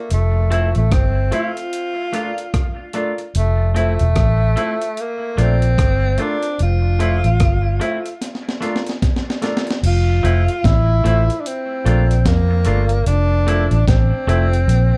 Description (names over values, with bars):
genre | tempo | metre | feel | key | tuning
roots reggae | 74 BPM | 4/4 | swing 60% on 16ths | F major | A4 = 440 Hz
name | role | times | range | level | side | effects
breathy tenor saxophone | melody | 0.0-15.0 s | A3 to F4 | -25 LUFS | equal | tape echo
vintage muted fingered electric bass | bass | 0.1-14.9 s | E1 to F2 | -18 LUFS | equal | none
breakbeat sampler-style drum kit | drums | 0.1-14.9 s | crash cymbal, hi-hat, kick drum, rim click, snare drum | -22 LUFS | equal | none
semi-hollow electric guitar | accompaniment | 0.5-14.5 s | A3 to F4 | -30 LUFS | equal | tape echo
warm baby grand piano | stabs | 0.5-14.6 s | F4 to E5 | -29 LUFS | equal | none
room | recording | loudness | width
light reverb | dark, warm production | -17 LUFS | mono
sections
0.0-9.8 A section; 9.8-15.0 B section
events
drum fill 8.2-9.8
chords
0.1 Fmaj7; 1.7 Bbmaj7; 3.4 Fmaj7; 5.0 Bbmaj7; 6.6 Fmaj7; 8.2 Bbmaj7; 9.8 Fmaj7; 11.4 Bbmaj7; 13.1 Fmaj7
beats
| 0.11 0.92 1.73 2.54 | 3.35 4.16 4.97 5.78 | 6.59 7.40 8.21 9.02 | 9.83 10.64 11.45 12.26 | 13.06 13.87 14.68